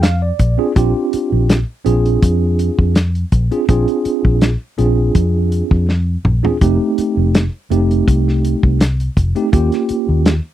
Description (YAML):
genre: straight-eighth soul blues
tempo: 82 BPM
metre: 4/4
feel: straight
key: Bb mixolydian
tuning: A4 = 440 Hz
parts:
  - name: mellow tine electric piano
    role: accompaniment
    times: 0.0-10.3 s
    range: A3 to F5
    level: -17 LUFS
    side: right 3 dB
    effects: medium stereo tremolo
  - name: vintage muted fingered electric bass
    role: bass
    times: 0.0-10.4 s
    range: F1 to F2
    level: -15 LUFS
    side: left 1 dB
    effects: none
  - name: warm soul drum kit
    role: drums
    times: 0.0-10.4 s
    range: hi-hat, kick drum, snare drum, toms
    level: -15 LUFS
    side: left 1 dB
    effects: none
room: little or no reverb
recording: dry, close 1970s-style studio recording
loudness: -13 LUFS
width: side -12 dB against mid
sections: 0.0-10.5 A section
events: tine electric piano fill 0.0-0.8; drum fill 5.9-6.6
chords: 0.0 Bb7; 6.6 F7; 9.5 Eb7